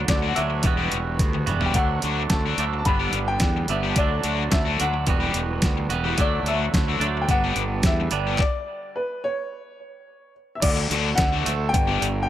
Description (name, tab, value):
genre	indie rock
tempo	108 BPM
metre	4/4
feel	straight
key	D major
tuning	A4 = 440 Hz
part	warm upright piano	melody	0.0-12.3 s	B4 to B5	-28 LUFS	left 3 dB	none
part	twangy electric guitar	riff	0.0-12.3 s	G2 to F#4	-28 LUFS	right 8 dB	lush chorus, analog delay
part	fuzz fingered electric bass	bass	0.0-12.3 s	E1 to E2	-26 LUFS	equal	overdrive
part	distorted electric guitar	riff	0.1-12.1 s	D3 to G4	-28 LUFS	left 10 dB	distortion
part	detuned 8-bit digital drum machine	drums	0.1-12.2 s	crash cymbal, handclaps, hi-hat, kick drum, snare drum, toms	-23 LUFS	equal	overdrive
room	light reverb, digital ambience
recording	none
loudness	-20 LUFS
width	side -12 dB against mid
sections	0.0-10.6 A section; 10.6-12.3 B section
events	drum fill 1.2-1.8; stop 8.4-10.6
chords	0.0 D; 0.6 Emadd9; 1.8 D; 2.9 G; 4.0 D; 5.1 Emadd9; 6.2 D; 7.3 G; 8.4 N.C.; 10.6 D; 11.7 G